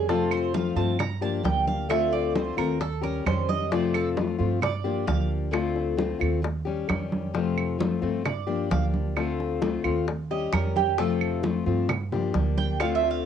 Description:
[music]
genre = latin, Cuban son and guajira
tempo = 132 BPM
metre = 4/4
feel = straight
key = unclear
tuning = A4 = 440 Hz
[part]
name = fingerpicked steel-string acoustic guitar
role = accompaniment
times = 0.0-13.3 s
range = C3 to G4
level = -27 LUFS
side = left 7 dB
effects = cassette tape
[part]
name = Cuban tres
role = arpeggios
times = 0.0-5.3, 8.3-13.3 s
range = G4 to Bb5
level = -29 LUFS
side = right 10 dB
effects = cassette tape
[part]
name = upright bass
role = bass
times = 0.0-13.3 s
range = D2 to G2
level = -29 LUFS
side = right 3 dB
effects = none
[part]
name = bongos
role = percussion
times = 0.1-13.3 s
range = none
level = -33 LUFS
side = left 7 dB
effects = none
[part]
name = congas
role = percussion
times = 0.1-13.3 s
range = none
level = -33 LUFS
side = right 2 dB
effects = none
[part]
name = claves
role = percussion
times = 0.3-13.0 s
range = none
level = -33 LUFS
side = right 14 dB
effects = none
[sound]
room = moderate studio reverb, RT60 0.6 s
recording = home recording on cassette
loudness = -23 LUFS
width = side -8 dB against mid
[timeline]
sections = 0.0-13.3 A section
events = Cuban tres solo 0.0-13.3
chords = 0.1 F; 1.0 Gm7; 1.9 Dm7; 2.8 Eb7; 3.7 F; 4.6 Gm7; 5.5 Dm7; 6.4 Eb7; 7.3 F; 8.3 Gm7; 9.2 Dm7; 10.1 Eb7; 11.0 F; 11.9 Gm7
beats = | 0.09 0.54 0.99 1.45 | 1.90 2.36 2.81 3.26 | 3.72 4.17 4.62 5.08 | 5.53 5.99 6.44 6.89 | 7.35 7.80 8.26 8.71 | 9.17 9.62 10.07 10.53 | 10.98 11.44 11.89 12.35 | 12.80 13.25

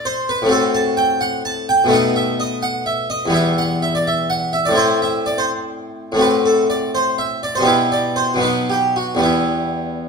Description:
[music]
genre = classical, baroque-style suite movement for harpsichord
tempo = 73-87 BPM (dotted quarters)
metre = 12/8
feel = rubato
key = E minor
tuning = A4 = 440 Hz
[part]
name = harpsichord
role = solo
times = 0.0-10.1 s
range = E2 to A5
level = -16 LUFS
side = equal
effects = none
[sound]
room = moderate recital hall reverb, RT60 1.4 s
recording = none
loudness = -15 LUFS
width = side -5 dB against mid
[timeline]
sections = 0.0-10.1 A section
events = none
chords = 0.0 Am; 0.5 F#dim/A; 1.9 B7; 3.3 Em; 4.8 Am; 6.2 F#dim/A; 7.7 Em/B; 8.4 B; 9.2 Em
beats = | 0.52 1.22 1.93 2.64 | 3.35 4.07 4.78 5.50 | 6.22 6.93 7.67 8.42 | 9.23 10.04

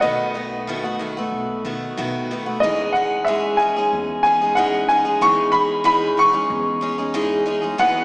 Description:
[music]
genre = folk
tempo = 93 BPM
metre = 4/4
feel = straight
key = unclear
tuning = A4 = 439 Hz
[part]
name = clear upright piano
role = melody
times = 0.0-8.0 s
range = D#5 to C#6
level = -18 LUFS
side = equal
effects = none
[part]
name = picked steel-string acoustic guitar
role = accompaniment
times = 0.0-8.0 s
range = E2 to G#4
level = -22 LUFS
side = equal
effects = none
[part]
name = upright bass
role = bass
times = 0.0-8.0 s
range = B1 to B2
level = -33 LUFS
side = equal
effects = none
[sound]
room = wet concert hall reverb, RT60 2.3 s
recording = recorded in a church or concert hall, small speaker sound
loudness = -17 LUFS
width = side -28 dB against mid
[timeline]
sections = 0.0-2.6 A section; 2.6-8.0 B section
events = none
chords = 0.0 B7; 2.6 C#madd9/E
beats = | 0.04 0.68 1.33 1.98 | 2.62 3.27 3.92 4.57 | 5.21 5.86 6.51 7.16 | 7.80

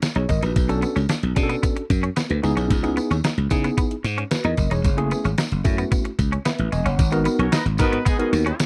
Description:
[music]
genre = early-eighties boogie funk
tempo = 112 BPM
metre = 4/4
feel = straight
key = G# phrygian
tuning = A4 = 441 Hz
[part]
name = detuned 8-bit digital drum machine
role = drums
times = 0.0-8.7 s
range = hi-hat, kick drum, snare drum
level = -24 LUFS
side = equal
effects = none
[part]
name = tambourine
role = percussion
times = 0.0-8.7 s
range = none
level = -40 LUFS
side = equal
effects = none
[part]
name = tine electric piano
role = accompaniment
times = 0.2-8.4 s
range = A3 to G#5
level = -27 LUFS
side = equal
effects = overdrive
[part]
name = clean electric guitar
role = riff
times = 0.2-8.6 s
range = B3 to D#4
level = -32 LUFS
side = equal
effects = subtle chorus
[part]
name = slap bass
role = bass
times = 0.2-8.5 s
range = E1 to C#3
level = -24 LUFS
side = equal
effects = none
[part]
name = clear horn section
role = second line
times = 7.4-8.6 s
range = G#3 to D#5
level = -30 LUFS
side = equal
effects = none
[sound]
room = little or no reverb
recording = dry, close 1970s-style studio recording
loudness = -21 LUFS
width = mono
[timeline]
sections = 0.0-7.0 A section; 7.0-8.7 B section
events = none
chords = 0.0 G#m9; 0.6 Bm9; 2.4 C#m9; 4.8 F#m9; 7.0 G#m9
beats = 0.02 | 0.56 1.10 1.63 2.17 | 2.70 3.24 3.77 4.31 | 4.85 5.38 5.92 6.45 | 6.99 7.52 8.06 8.60

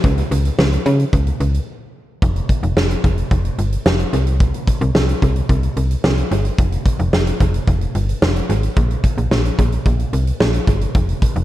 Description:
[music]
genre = synth-pop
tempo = 110 BPM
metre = 4/4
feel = straight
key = unclear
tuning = A4 = 440 Hz
[part]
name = slap-like FM bass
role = bass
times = 0.0-11.4 s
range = F1 to Db3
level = -17 LUFS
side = equal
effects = none
[part]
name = huge arena drum kit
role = drums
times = 0.0-11.4 s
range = hi-hat, kick drum, snare drum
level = -18 LUFS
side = equal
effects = tape echo
[sound]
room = light reverb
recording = echo-heavy mix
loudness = -15 LUFS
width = side -14 dB against mid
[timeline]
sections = 0.0-2.2 A section; 2.2-11.4 B section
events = break 1.7-2.2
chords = none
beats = | 0.04 0.58 1.13 1.68 | 2.22 2.77 3.31 3.86 | 4.40 4.95 5.49 6.04 | 6.58 7.13 7.68 8.22 | 8.77 9.31 9.86 10.40 | 10.95

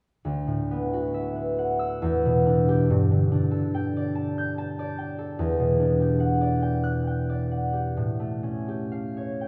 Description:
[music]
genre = classical, solo harp piece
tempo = 70 BPM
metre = 3/4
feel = uneven beats, rubato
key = D major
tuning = A4 = 440 Hz
[part]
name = concert harp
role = solo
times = 0.2-9.5 s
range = D2 to G6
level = -25 LUFS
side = equal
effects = none
[sound]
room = wet church reverb, RT60 3.1 s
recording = none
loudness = -25 LUFS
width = mono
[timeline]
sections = 0.2-9.5 A section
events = none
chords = 0.2 D69; 2.0 Em9; 2.9 Gadd9; 5.4 Em9; 8.0 Aaug7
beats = | 0.23 1.12 2.00 | 2.87 3.72 4.56 | 5.39 6.21 7.07 | 7.98 8.93

